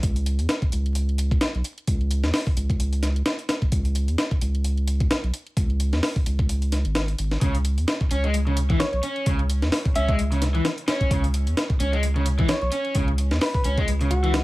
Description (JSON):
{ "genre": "breakbeat, breaks", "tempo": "130 BPM", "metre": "4/4", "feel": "swing 56% on 16ths", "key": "C# minor", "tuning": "A4 = 439 Hz", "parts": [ { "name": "saturated sub bass", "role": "bass", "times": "0.0-14.4 s", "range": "G#1 to E2", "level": "-23 LUFS", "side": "equal", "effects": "none" }, { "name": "breakbeat sampler-style drum kit", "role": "drums", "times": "0.0-14.4 s", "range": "hi-hat, kick drum, snare drum", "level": "-24 LUFS", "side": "equal", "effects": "small room reverb" }, { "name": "electronic hi-hat", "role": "drums", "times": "0.0-14.4 s", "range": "none", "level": "-38 LUFS", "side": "right 1 dB", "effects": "overdrive, small room reverb" }, { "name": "overdriven semi-hollow guitar", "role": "riff", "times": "7.4-14.3 s", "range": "C#3 to C#4", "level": "-27 LUFS", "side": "equal", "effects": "dub echo" }, { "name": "soft struck synth lead", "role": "melody", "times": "8.8-14.4 s", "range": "F#4 to E5", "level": "-30 LUFS", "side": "equal", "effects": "chorus, telephone sound, dub echo" } ], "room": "little or no reverb", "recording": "vinyl crackle", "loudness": "-21 LUFS", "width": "side -19 dB against mid", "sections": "0.0-14.4 A section", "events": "none", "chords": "none" }